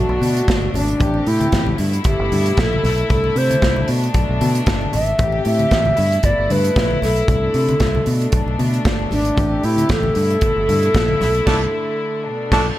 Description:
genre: disco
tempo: 115 BPM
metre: 4/4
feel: straight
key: unclear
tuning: A4 = 440 Hz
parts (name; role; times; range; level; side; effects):
- mellow alto flute; melody; 0.0-12.8 s; D4 to E5; -20 LUFS; equal; none
- rich studio string section; sustained chords; 0.0-12.8 s; B2 to G4; -24 LUFS; left 2 dB; none
- fingered electric bass; bass; 0.0-12.7 s; G1 to C3; -20 LUFS; equal; none
- congas; percussion; 0.1-11.3 s; none; -27 LUFS; left 3 dB; none
- modern studio drum kit; drums; 0.2-12.7 s; crash cymbal, hi-hat, kick drum, snare drum; -21 LUFS; equal; gated reverb
- warm horn section; stabs; 11.5-12.7 s; A3 to A4; -21 LUFS; right 1 dB; none
room: studio reverb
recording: none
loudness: -15 LUFS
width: side -14 dB against mid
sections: 0.0-12.8 A section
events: band accent 11.5-12.8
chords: 0.0 Bm7; 1.0 Am7; 1.8 G69; 3.1 C69; 3.9 Bm7; 5.2 Am7; 6.0 G69; 7.3 C69; 8.1 Bm7; 9.4 Am7; 10.2 G69; 11.5 C69; 12.3 Bm7

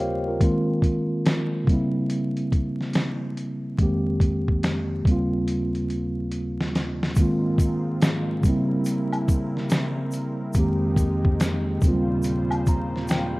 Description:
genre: lo-fi hip hop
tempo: 71 BPM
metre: 4/4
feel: swing 65% on 16ths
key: Ab major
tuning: A4 = 440 Hz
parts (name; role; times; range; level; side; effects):
- mellow tine electric piano; accompaniment; 0.0-13.4 s; Eb2 to Bb5; -23 LUFS; equal; medium stereo tremolo
- lo-fi sampler-style drum kit; drums; 0.0-13.4 s; finger snaps, hi-hat, kick drum, snare drum; -23 LUFS; equal; none
- warm analog pad; sustained chords; 7.2-13.4 s; Eb2 to C5; -33 LUFS; left 1 dB; wide subtle chorus
- egg shaker and woodblock; percussion; 7.2-13.3 s; none; -36 LUFS; left 1 dB; none
room: light reverb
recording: rough home demo mix, vinyl crackle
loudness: -21 LUFS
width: side -22 dB against mid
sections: 0.0-7.2 A section; 7.2-13.4 A section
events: tine electric piano fill 0.0-0.4, 12.2-13.4; drum fill 5.5-7.2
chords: 0.4 Ab6; 1.7 C7b9; 3.8 Fm11; 5.1 Eb13; 7.2 Ab6; 8.4 C7b9; 10.5 Fm11; 11.8 Eb13

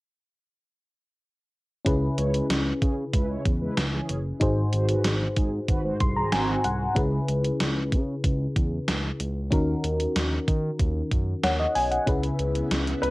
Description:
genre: 1980s-style pop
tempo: 94 BPM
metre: 4/4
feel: straight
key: C# dorian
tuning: A4 = 440 Hz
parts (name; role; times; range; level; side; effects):
- mellow FM electric piano; accompaniment; 1.8-13.1 s; G#2 to B#5; -26 LUFS; left 1 dB; chorus
- smooth synth bass; bass; 1.9-13.1 s; F#1 to D#3; -29 LUFS; equal; none
- gated 80s digital drum machine; drums; 1.9-13.1 s; hi-hat, kick drum, snare drum; -26 LUFS; equal; gated reverb, gated reverb snare
- mellow synth brass; stabs; 2.2-6.6 s; D#3 to C#5; -32 LUFS; right 2 dB; chorus, tape echo
- string machine, violins; sustained chords; 12.1-13.1 s; C#3 to E4; -35 LUFS; equal; ensemble chorus
- clear grand piano; melody; 13.0-13.1 s; B4; -23 LUFS; equal; cassette tape
room: moderate studio reverb, RT60 0.5 s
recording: home recording on cassette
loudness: -23 LUFS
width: side -20 dB against mid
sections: 1.9-12.1 A section; 12.1-13.1 B section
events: FM electric piano fill 5.7-7.0, 11.1-12.1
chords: 1.9 C#m7; 4.4 G#7; 7.0 C#m7; 9.5 D#m7; 12.1 C#m7

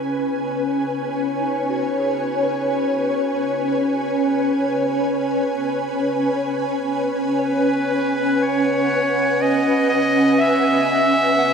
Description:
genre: ambient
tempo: 60 BPM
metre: 4/4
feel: straight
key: C# minor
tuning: A4 = 440 Hz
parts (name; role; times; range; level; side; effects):
- ethereal airy pad; sustained chords; 0.0-11.5 s; C#4 to G#5; -19 LUFS; equal; ensemble chorus, built-in reverb, tremolo
- soft synth bell; arpeggios; 0.0-11.5 s; C#4 to F#5; -32 LUFS; left 1 dB; none
- bright clarinet; melody; 7.4-11.5 s; B4 to E5; -20 LUFS; equal; analog delay
room: wet huge ambient reverb, RT60 7.3 s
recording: dreamy mix soaked in reverb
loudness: -17 LUFS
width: side -6 dB against mid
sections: 0.0-11.5 A section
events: none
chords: 0.0 C#m7

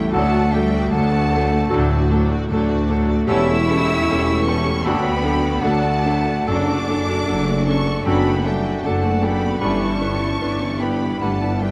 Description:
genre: classical, romantic movement for piano and orchestra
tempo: 76 BPM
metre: 4/4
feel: rubato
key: D major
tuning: A4 = 439 Hz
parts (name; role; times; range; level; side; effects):
- warm grand piano; melody; 0.0-11.7 s; D2 to B4; -24 LUFS; equal; none
- warm symphonic violin section; melody; 0.0-11.7 s; G5 to E6; -31 LUFS; equal; none
- silver concert flute; second line; 0.0-11.7 s; E5 to C#6; -30 LUFS; equal; none
- warm symphonic violin section; second line; 0.0-11.7 s; E4 to D5; -36 LUFS; equal; none
- warm symphonic viola section; accompaniment; 0.0-11.7 s; D3 to F#4; -32 LUFS; equal; none
- clear symphonic cello section; bass; 0.0-11.7 s; G3 to E4; -28 LUFS; equal; none
- mellow tuba; bass; 0.0-11.7 s; E1 to D2; -27 LUFS; equal; none
- rich symphonic double bass section; bass; 0.0-11.7 s; F#1 to E2; -27 LUFS; equal; none
- dark clarinet; second line; 0.1-11.5 s; E4 to G4; -31 LUFS; equal; none
- warm cor anglais; second line; 0.1-11.5 s; A4 to B4; -32 LUFS; equal; none
- mellow French horn section; sustained chords; 0.2-11.5 s; E3 to D4; -31 LUFS; equal; none
room: moderate concert hall reverb, RT60 2.3 s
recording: vinyl crackle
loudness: -19 LUFS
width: mono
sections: 0.0-11.7 A section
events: none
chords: 0.1 D; 3.3 A7/E; 4.9 D; 6.5 D/F#; 9.6 Em7/G

